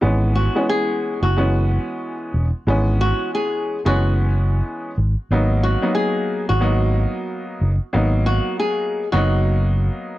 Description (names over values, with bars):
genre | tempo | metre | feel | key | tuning
hip hop, boom-bap hip-hop | 91 BPM | 4/4 | swing 62% on 16ths | unclear | A4 = 441 Hz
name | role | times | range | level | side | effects
warm upright piano | accompaniment | 0.0-10.2 s | E3 to D#4 | -23 LUFS | equal | cassette tape, high-pass filter, low-pass filter
fingered electric bass | bass | 0.0-9.9 s | E1 to G#1 | -18 LUFS | equal | none
flamenco guitar | melody | 0.4-9.9 s | F#4 to G#4 | -23 LUFS | left 1 dB | high-pass filter, low-pass filter, analog delay
room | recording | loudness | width
little or no reverb | dry, gritty hardware recording, transformer saturation | -17 LUFS | side -16 dB against mid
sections
0.0-10.2 A section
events
none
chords
0.0 F#9sus4; 5.3 G#m9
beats
| 0.03 0.69 1.35 2.01 | 2.67 3.33 3.98 4.64 | 5.30 5.96 6.62 7.28 | 7.94 8.60 9.26 9.92